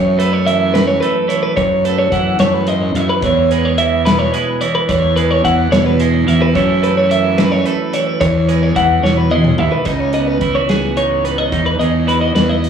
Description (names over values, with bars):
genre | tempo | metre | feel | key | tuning
math rock and midwest emo | 72 BPM (dotted quarters) | 6/8 | straight | E major | A4 = 440 Hz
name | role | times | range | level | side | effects
twelve-string electric guitar | accompaniment | 0.0-12.7 s | E2 to F#4 | -20 LUFS | right 11 dB | slapback echo
twelve-string electric guitar | arpeggios | 0.0-12.7 s | G#4 to F#5 | -16 LUFS | equal | tape echo, slapback echo
fuzz fingered electric bass | bass | 0.0-12.7 s | C#2 to F#2 | -16 LUFS | left 1 dB | overdrive
loose indie drum kit | drums | 0.2-12.7 s | hi-hat, kick drum, snare drum, toms | -21 LUFS | equal | none
room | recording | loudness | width
light reverb, small room ambience | live gig heard through the venue's PA, club reverb, studio reverb | -12 LUFS | side -7 dB against mid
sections
0.0-9.9 A section; 9.9-12.7 B section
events
drum fill 9.0-9.9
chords
0.0 B9sus4/F#; 3.2 E6; 6.5 B9sus4/F#; 8.2 E69; 9.9 C#m9; 11.5 Emaj9